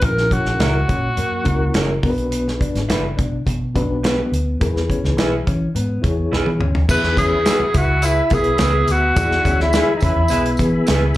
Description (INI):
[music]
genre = uptempo 1960s-style soul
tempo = 105 BPM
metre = 4/4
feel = straight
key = unclear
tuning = A4 = 440 Hz
[part]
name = breathy tenor saxophone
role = melody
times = 0.0-2.0, 6.9-10.6 s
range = D#4 to B4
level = -19 LUFS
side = equal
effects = slapback echo
[part]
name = mellow reed electric piano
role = accompaniment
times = 0.0-11.2 s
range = A#2 to D5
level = -24 LUFS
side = left 2 dB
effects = fast tremolo, slapback echo
[part]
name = vintage muted fingered electric bass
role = bass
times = 0.0-11.1 s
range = F#1 to E3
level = -21 LUFS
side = equal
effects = none
[part]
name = natural country drum kit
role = drums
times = 0.0-11.0 s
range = crash cymbal, hi-hat, kick drum, snare drum, toms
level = -21 LUFS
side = equal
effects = none
[part]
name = mellow electric guitar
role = riff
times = 0.3-10.8 s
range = A#3 to F#4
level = -27 LUFS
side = left 3 dB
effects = spring reverb, slapback echo
[part]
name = electric guitar through a small old amp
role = stabs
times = 0.6-11.0 s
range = C#4 to B4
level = -24 LUFS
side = right 3 dB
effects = lush chorus, slapback echo
[part]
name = tonewheel organ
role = sustained chords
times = 6.9-11.2 s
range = E5 to B5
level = -30 LUFS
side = right 1 dB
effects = slow rotary speaker, overdrive, chorus vibrato
[part]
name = tambourine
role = percussion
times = 6.9-11.2 s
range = none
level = -34 LUFS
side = right 3 dB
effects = none
[part]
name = clear horn section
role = second line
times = 7.5-10.5 s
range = G#3 to B4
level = -26 LUFS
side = equal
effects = slapback echo
[sound]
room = light reverb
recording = live gig heard through the venue's PA, club ambience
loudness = -16 LUFS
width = side -15 dB against mid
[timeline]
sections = 0.0-6.9 A section; 6.9-11.2 B section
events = drum fill 6.3-6.9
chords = 0.0 F#7/A#; 2.0 Bm; 4.6 E